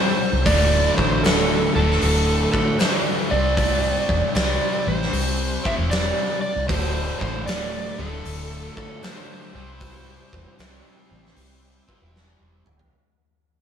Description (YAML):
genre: blues rock power trio and southern rock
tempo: 77 BPM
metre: 4/4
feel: swing 67% on 8ths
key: unclear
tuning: A4 = 441 Hz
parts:
  - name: overdriven slide guitar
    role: melody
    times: 0.0-12.1 s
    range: A4 to E5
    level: -25 LUFS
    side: right 1 dB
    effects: none
  - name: overdriven tonewheel organ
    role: sustained chords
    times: 0.0-12.9 s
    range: F#3 to G#4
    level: -38 LUFS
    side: right 4 dB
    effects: none
  - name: cranked stack guitar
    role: riff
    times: 0.0-12.6 s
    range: D2 to C4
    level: -26 LUFS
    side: equal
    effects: overdrive
  - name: vintage muted fingered electric bass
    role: bass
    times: 0.3-12.9 s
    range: D1 to C2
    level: -24 LUFS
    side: equal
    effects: none
  - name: big rock drum kit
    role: drums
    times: 0.5-12.9 s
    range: hi-hat, kick drum, snare drum, toms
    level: -24 LUFS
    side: equal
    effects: none
room: moderate studio reverb, RT60 0.6 s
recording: band playing live in one room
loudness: -18 LUFS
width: side -8 dB against mid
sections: 0.0-12.9 A section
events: fade-out 0.0-12.9; drum fill 12.1-12.9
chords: 0.5 D; 3.2 C; 6.7 D; 9.4 C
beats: | 0.46 1.24 2.02 2.80 | 3.58 4.35 5.13 5.91 | 6.69 7.47 8.25 9.03 | 9.81 10.59 11.36 12.14